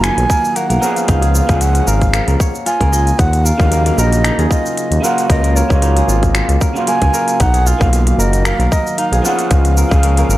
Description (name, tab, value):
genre	organic downtempo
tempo	114 BPM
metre	4/4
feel	swing 54% on 16ths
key	unclear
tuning	A4 = 440 Hz
part	breathy bright bass bansuri	melody	0.0-10.4 s	Db5 to Ab5	-19 LUFS	right 1 dB	tape echo
part	electric guitar through a small old amp	accompaniment	0.0-10.4 s	Db3 to Ab4	-19 LUFS	right 1 dB	sidechain pumping, analog delay
part	kora	arpeggios	0.0-10.4 s	A#3 to Eb5	-22 LUFS	equal	analog delay
part	smooth synth bass	bass	0.0-10.4 s	F#1 to Eb2	-14 LUFS	equal	none
part	organic electronic drum kit	drums	0.0-10.4 s	finger snaps, hi-hat, shaker	-22 LUFS	equal	overdrive
part	electronic kick drum	drums	0.3-10.0 s	none	-16 LUFS	equal	overdrive
room	little or no reverb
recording	dry, gritty hardware recording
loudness	-11 LUFS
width	side -15 dB against mid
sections	0.0-10.4 A section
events	none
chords	0.0 Bmaj7; 1.1 Db7; 3.2 Ebm7; 5.3 Gbmaj7; 7.4 Bmaj7; 9.5 Db7